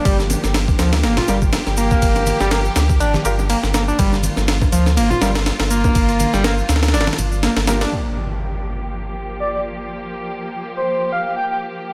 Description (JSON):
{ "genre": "breakbeat, breaks", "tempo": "122 BPM", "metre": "4/4", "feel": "swing 56% on 16ths", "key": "G minor", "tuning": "A4 = 440 Hz", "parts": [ { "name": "warm studio string section", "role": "sustained chords", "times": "0.0-11.9 s", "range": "F3 to G4", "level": "-30 LUFS", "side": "equal", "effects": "sidechain pumping, low-pass filter" }, { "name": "overdriven synth lead", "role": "riff", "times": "0.0-7.9 s", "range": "F3 to F4", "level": "-23 LUFS", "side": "equal", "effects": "dub echo" }, { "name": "saturated sub bass", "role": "bass", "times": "0.1-7.9 s", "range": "G1 to D2", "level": "-22 LUFS", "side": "equal", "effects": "none" }, { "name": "breakbeat sampler-style drum kit", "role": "drums", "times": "0.1-7.9 s", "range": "kick drum, ride cymbal, snare drum", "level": "-22 LUFS", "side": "equal", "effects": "none" }, { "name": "shaker", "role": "drums", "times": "0.1-7.9 s", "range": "none", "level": "-34 LUFS", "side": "equal", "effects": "overdrive, low-pass filter on perc" }, { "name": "bongos and congas", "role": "percussion", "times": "0.1-7.8 s", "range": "none", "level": "-30 LUFS", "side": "equal", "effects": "none" }, { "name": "clear concert grand piano", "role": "stabs", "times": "1.3-7.8 s", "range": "F4 to Bb4", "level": "-29 LUFS", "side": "equal", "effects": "dub echo" }, { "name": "impact", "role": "sound effects", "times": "7.9-9.9 s", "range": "none", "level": "-29 LUFS", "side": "equal", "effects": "none" }, { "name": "breathy flute-like synth lead", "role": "melody", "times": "9.4-11.6 s", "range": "C5 to G5", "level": "-24 LUFS", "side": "equal", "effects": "chorus, small speaker sound, dub echo" } ], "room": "light reverb", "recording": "none", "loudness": "-18 LUFS", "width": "mono", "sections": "0.0-7.9 A section; 7.9-11.9 B section", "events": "impact 7.9-9.9", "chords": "0.0 Gm7", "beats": "| 0.05 0.54 1.04 1.53 | 2.02 2.51 3.00 3.50 | 3.99 4.48 4.97 5.46 | 5.95 6.45 6.94 7.43 | 7.92 8.41 8.90 9.40 | 9.89 10.38 10.87 11.36 | 11.86" }